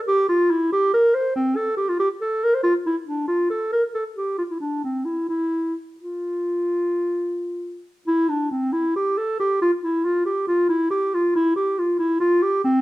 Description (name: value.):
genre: classical, baroque-style fantasia for unaccompanied clarinet.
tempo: 84-96 BPM (dotted quarters).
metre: 12/8.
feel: rubato.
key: F major.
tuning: A4 = 440 Hz.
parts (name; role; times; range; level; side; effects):
mellow clarinet; solo; 0.1-12.8 s; C4 to C5; -19 LUFS; equal; none.
room: wet stone room reverb, RT60 1.0 s.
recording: heard from further back in the room.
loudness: -19 LUFS.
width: side -17 dB against mid.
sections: 0.0-8.1 A section; 8.1-12.8 A section.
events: none.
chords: none.